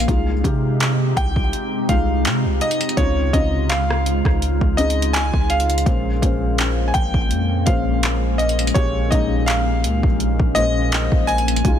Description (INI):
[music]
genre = contemporary R&B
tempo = 83 BPM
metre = 4/4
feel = swing 54% on 16ths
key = Bb dorian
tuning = A4 = 440 Hz
[part]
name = clear grand piano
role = melody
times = 0.0-11.8 s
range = Db5 to Ab5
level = -24 LUFS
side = equal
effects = digital delay
[part]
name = felt-muted upright piano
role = accompaniment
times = 0.0-11.8 s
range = Bb2 to C5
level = -25 LUFS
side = left 4 dB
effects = none
[part]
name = glassy FM pad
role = sustained chords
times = 0.0-11.8 s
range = C3 to Ab4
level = -25 LUFS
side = left 1 dB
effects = ensemble chorus, built-in reverb, sidechain pumping
[part]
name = long sustained 808-style bass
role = bass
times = 0.0-11.8 s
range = Bb1 to C3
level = -21 LUFS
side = equal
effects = none
[part]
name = smooth R&B drum kit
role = drums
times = 0.0-11.8 s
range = handclaps, hi-hat, kick drum, rim click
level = -21 LUFS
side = equal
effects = overdrive
[sound]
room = digital ambience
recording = dense, heavily limited modern master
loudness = -16 LUFS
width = side -9 dB against mid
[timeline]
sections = 0.0-11.8 A section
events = none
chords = 0.1 Fm9/C; 3.0 Dbmaj9; 5.9 Bbm9